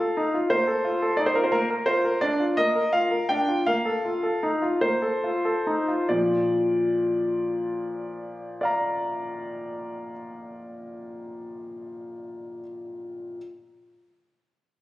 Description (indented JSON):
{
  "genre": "classical-period piano sonatina",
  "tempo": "46-60 BPM (dotted quarters)",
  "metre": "6/8",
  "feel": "rubato",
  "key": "Bb major",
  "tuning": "A4 = 439 Hz",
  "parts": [
    { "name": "bright grand piano", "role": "solo", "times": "0.0-13.4 s", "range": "Bb2 to Bb5", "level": "-24 LUFS", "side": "equal", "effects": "none" }
  ],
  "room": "moderate recital hall reverb, RT60 1.5 s",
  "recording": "recorded on a phone in the room, club reverb, compression",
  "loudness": "-22 LUFS",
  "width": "side -16 dB against mid",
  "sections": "0.0-6.1 A section; 6.1-11.1 B section",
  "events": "slowing down 0.5-6.1",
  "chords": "0.0 F7; 1.5 Bb; 3.7 F7/Bb; 6.1 Bb",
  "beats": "0.52 | 1.53 2.57 | 3.66 4.82 | 6.09 7.34 | 8.61 9.87"
}